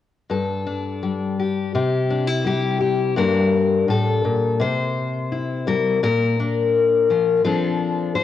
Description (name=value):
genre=folk, solo fingerstyle acoustic guitar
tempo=85 BPM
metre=4/4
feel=rubato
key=G dorian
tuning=A4 = 435 Hz
part: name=fingerpicked steel-string acoustic guitar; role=solo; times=0.3-8.2 s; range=G2 to C5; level=-18 LUFS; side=left 4 dB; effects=cassette tape
room=moderate lush hall reverb, RT60 2.4 s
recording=home recording on cassette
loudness=-18 LUFS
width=side -11 dB against mid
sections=0.3-3.2 A section; 3.2-8.2 B section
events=none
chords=0.3 Gsus2; 1.7 C; 3.2 Gmadd9; 4.6 C; 6.0 Bb; 7.4 F6